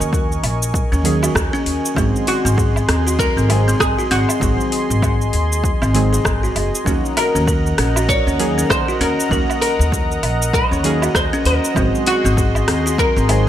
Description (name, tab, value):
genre	organic downtempo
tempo	98 BPM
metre	4/4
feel	swing 59% on 16ths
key	Eb dorian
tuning	A4 = 440 Hz
part	oud	melody	0.0-13.5 s	Gb4 to Db5	-22 LUFS	equal	digital delay
part	deep mellow chord stab	accompaniment	0.0-13.5 s	Eb3 to Ab4	-25 LUFS	right 3 dB	chorus, sidechain pumping, digital delay
part	warm analog pad	sustained chords	0.0-13.5 s	Gb4 to Db6	-24 LUFS	equal	chorus, sidechain pumping
part	upright bass	bass	0.0-13.5 s	Gb1 to Eb2	-19 LUFS	equal	sidechain pumping
part	deep house drum kit	drums	0.0-13.4 s	cabasa, hi-hat, rim click, woodblock	-23 LUFS	equal	overdrive, small room ambience, gated reverb
part	electronic kick drum	drums	0.1-13.1 s	none	-22 LUFS	equal	overdrive, small room ambience
part	buzzing kalimba	arpeggios	0.9-13.5 s	C4 to Bb4	-23 LUFS	left 1 dB	digital delay
room	light reverb, studio reverb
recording	bright 1980s-style digital production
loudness	-14 LUFS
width	side -11 dB against mid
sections	0.0-13.5 A section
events	none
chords	0.0 Ebm7; 2.0 Ab7; 6.9 Ebm7; 11.8 Ab7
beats	0.13 0.74 1.35 | 1.97 2.58 3.19 3.80 | 4.41 5.03 5.64 6.25 | 6.86 7.47 8.09 8.70 | 9.31 9.92 10.54 11.15 | 11.76 12.37 12.98